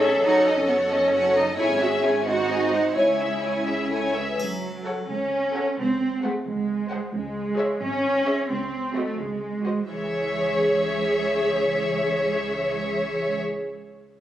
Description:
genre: cinematic, playful, whimsical film cue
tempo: 88 BPM (dotted quarters)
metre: 6/8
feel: straight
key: C# minor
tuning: A4 = 440 Hz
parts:
  - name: warm studio violin section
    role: melody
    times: 0.0-13.4 s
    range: D#5 to G#5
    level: -32 LUFS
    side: left 3 dB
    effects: none
  - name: warm studio violin section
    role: second line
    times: 0.0-13.4 s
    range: E4 to E5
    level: -27 LUFS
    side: equal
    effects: none
  - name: warm studio viola section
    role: accompaniment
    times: 0.0-13.4 s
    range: D#4 to A4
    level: -28 LUFS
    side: equal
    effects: none
  - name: mellow French horn section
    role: sustained chords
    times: 0.0-4.4 s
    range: G#4 to E5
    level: -23 LUFS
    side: equal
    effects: none
  - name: warm studio cello section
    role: bass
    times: 0.0-13.4 s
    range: E3 to F#4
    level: -27 LUFS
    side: right 2 dB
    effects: none
  - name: warm studio double bass section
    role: bass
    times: 0.0-13.4 s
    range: F#1 to C#2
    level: -35 LUFS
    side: right 4 dB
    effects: none
  - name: triangle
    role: percussion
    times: 4.4-5.3 s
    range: none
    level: -42 LUFS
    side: equal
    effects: none
room: moderate scoring stage reverb, RT60 1.6 s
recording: recorded on a phone in the room, studio ambience, compression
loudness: -21 LUFS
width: side -12 dB against mid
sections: 0.0-4.4 A section; 4.4-9.9 B section; 9.9-12.6 C section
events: none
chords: 0.2 D#m7b5/F#; 1.6 C#m/G#; 2.3 G#7; 3.0 C#m; 4.4 F#m/C#; 5.8 G#7/C#; 7.1 C#m; 8.5 G#7/C#; 9.9 C#m

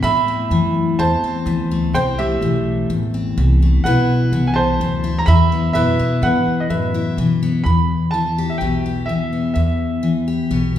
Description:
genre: honky-tonk and classic country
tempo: 126 BPM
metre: 4/4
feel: straight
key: E minor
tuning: A4 = 440 Hz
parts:
  - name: clear upright piano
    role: melody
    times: 0.0-10.2 s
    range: G4 to B5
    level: -21 LUFS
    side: right 3 dB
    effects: none
  - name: picked steel-string acoustic guitar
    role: accompaniment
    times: 0.0-10.8 s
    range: E2 to G4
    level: -19 LUFS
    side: left 3 dB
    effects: none
  - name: upright bass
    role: bass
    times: 0.0-10.8 s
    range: A1 to B2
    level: -20 LUFS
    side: right 1 dB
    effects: none
room: wet recital hall reverb, RT60 1.5 s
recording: recorded in a church or concert hall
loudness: -15 LUFS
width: side -11 dB against mid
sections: 0.0-7.6 A section; 7.6-10.8 B section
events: none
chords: 0.0 Am; 3.8 Bsus4; 7.6 Em

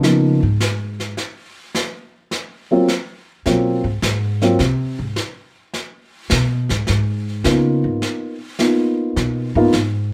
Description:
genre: jazz piano trio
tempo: 105 BPM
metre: 4/4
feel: swing 69% on 8ths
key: unclear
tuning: A4 = 441 Hz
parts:
  - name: dark baby grand piano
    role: melody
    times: 0.0-9.7 s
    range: F3 to F4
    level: -19 LUFS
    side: equal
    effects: none
  - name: upright bass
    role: bass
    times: 0.0-10.1 s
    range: Ab2 to Db3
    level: -22 LUFS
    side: equal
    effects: none
  - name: brushed snare drum and snare drum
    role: drums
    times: 0.0-10.1 s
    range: none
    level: -26 LUFS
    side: equal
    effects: none
room: moderate studio reverb, RT60 0.6 s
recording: band playing live in one room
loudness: -19 LUFS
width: mono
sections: 0.0-10.1 A section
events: upright bass solo 0.0-10.1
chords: 0.0 Db13; 1.2 Ab; 5.7 Db13 (rootless)

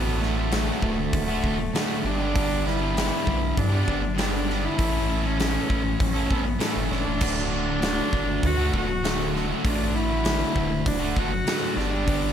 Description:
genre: quiet-loud alternative rock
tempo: 99 BPM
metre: 4/4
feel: straight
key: D major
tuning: A4 = 440 Hz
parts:
  - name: warm cello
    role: melody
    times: 0.0-12.3 s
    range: A3 to F#4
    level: -28 LUFS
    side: equal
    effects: slapback echo
  - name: fuzz guitar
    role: riff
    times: 0.0-12.3 s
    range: D2 to A4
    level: -30 LUFS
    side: right 10 dB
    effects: distortion
  - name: thick fuzz guitar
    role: riff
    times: 0.0-12.3 s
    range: D2 to A4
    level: -29 LUFS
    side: left 10 dB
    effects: distortion
  - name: sub bass with octave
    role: bass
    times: 0.0-12.3 s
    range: D1 to G2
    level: -28 LUFS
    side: equal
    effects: none
  - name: huge arena drum kit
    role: drums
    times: 0.2-12.2 s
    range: crash cymbal, hi-hat, kick drum, snare drum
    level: -28 LUFS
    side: equal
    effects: none
room: light reverb, small room ambience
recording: none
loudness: -22 LUFS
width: side -9 dB against mid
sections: 0.0-12.3 A section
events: none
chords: 0.0 D; 2.0 G; 4.8 A; 7.2 D; 11.8 G

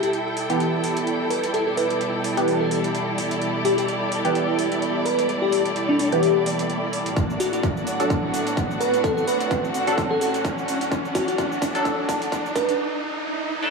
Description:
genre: bass house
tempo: 128 BPM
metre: 4/4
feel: swing 56% on 16ths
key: E minor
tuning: A4 = 441 Hz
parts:
  - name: bell-like FM electric piano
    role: melody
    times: 0.0-12.8 s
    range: D4 to B4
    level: -24 LUFS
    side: equal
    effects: chorus, dub echo
  - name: rich chamber string section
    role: sustained chords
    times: 0.0-12.8 s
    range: A2 to G4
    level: -29 LUFS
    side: equal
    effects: sidechain pumping
  - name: electronic hi-hat and cabasa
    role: drums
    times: 0.0-12.8 s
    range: none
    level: -35 LUFS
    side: right 3 dB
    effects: overdrive
  - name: riser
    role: sound effects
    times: 3.8-13.7 s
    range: none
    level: -30 LUFS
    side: equal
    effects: none
  - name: warm studio string section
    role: texture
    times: 0.0-12.8 s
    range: E4 to G5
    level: -27 LUFS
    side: right 1 dB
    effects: sidechain pumping
  - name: band-passed chord stab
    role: stabs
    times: 0.5-13.7 s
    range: E3 to A4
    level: -26 LUFS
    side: equal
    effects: phaser, sidechain pumping, dub echo
  - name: electronic kick drum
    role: drums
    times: 7.2-12.7 s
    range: none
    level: -27 LUFS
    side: right 1 dB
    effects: none
room: moderate digital room reverb, RT60 1.0 s, digital ambience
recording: high-pass filter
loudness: -20 LUFS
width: side -4 dB against mid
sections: 0.0-13.7 A section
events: build-up 0.0-13.7; filter sweep on synth stab 0.0-13.7; riser 3.8-13.7; drum fill 7.2-12.8; break 12.8-13.7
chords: 0.0 Em; 7.2 D

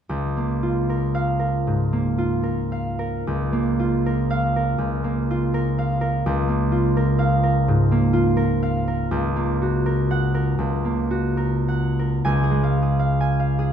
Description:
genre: classical, solo harp piece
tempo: 65-87 BPM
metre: 4/4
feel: rubato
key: Db major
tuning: A4 = 439 Hz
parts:
  - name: concert harp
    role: solo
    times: 0.1-13.7 s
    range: Db2 to Ab5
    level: -19 LUFS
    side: equal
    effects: none
room: wet recital hall reverb, RT60 1.6 s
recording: recorded in a church or concert hall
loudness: -19 LUFS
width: side -8 dB against mid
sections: 0.1-12.3 A section; 12.3-13.7 B section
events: none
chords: 0.1 Db6; 3.2 Bbm/Db; 6.2 Db6; 9.1 Gb/Db; 12.3 Db

